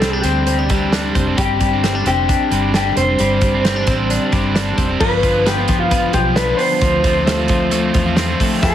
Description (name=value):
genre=jangly indie pop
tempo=132 BPM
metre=4/4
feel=straight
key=unclear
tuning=A4 = 440 Hz
part: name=electric guitar through a small old amp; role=melody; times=0.0-8.7 s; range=F4 to C5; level=-19 LUFS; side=left 1 dB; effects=harmonic tremolo, tape echo
part: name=biting overdriven guitar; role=accompaniment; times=0.0-8.7 s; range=G2 to F4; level=-22 LUFS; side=right 6 dB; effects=none
part: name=twelve-string electric guitar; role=arpeggios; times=0.0-8.7 s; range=E3 to D4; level=-20 LUFS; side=left 3 dB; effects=tape echo
part: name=vintage muted fingered electric bass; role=bass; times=0.0-8.7 s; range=F1 to F2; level=-22 LUFS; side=equal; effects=none
part: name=loose indie drum kit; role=drums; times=0.0-8.7 s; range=crash cymbal, hi-hat, kick drum, snare drum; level=-20 LUFS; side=right 1 dB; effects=none
part: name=combo organ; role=accompaniment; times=8.6-8.7 s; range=F3 to E5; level=-20 LUFS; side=left 5 dB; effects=none
room=light reverb, small room reverb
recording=heavily compressed radio sound, multiband compression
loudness=-14 LUFS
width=side -11 dB against mid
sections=0.0-5.0 A section; 5.0-8.7 B section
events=none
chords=0.0 Csus2; 1.4 Gsus4; 5.0 G7; 6.8 Dm7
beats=0.02 0.47 0.93 | 1.38 1.83 2.29 2.74 | 3.19 3.65 4.10 4.55 | 5.00 5.46 5.91 6.36 | 6.82 7.27 7.72 8.17 | 8.63